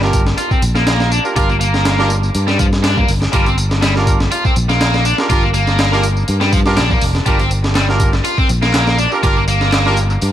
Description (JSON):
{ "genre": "breakbeat, breaks", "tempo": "122 BPM", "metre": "4/4", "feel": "swing 54% on 16ths", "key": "G minor pentatonic", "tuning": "A4 = 440 Hz", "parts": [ { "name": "clear horn section", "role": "stabs", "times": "0.0-10.0 s", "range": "D4 to Bb4", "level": "-21 LUFS", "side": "right 3 dB", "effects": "analog delay" }, { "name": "fingered electric bass", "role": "bass", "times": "0.0-10.3 s", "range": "F1 to G2", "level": "-16 LUFS", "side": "equal", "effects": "tube saturation" }, { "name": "breakbeat sampler-style drum kit", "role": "drums", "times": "0.0-10.3 s", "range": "hi-hat, kick drum, snare drum", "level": "-17 LUFS", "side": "equal", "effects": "none" }, { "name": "electronic tambourine and handclaps", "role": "drums", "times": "0.1-10.3 s", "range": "none", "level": "-28 LUFS", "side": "equal", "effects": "analog delay" }, { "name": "tight distorted guitar", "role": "riff", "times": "0.4-10.0 s", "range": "F3 to F4", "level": "-18 LUFS", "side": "left 1 dB", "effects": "distortion, tube saturation, low-pass filter, analog delay" } ], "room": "light reverb, digital ambience", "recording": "echo-heavy mix, vinyl crackle", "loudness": "-12 LUFS", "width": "side -11 dB against mid", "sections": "0.0-10.3 A section", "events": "none", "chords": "0.0 Gm7" }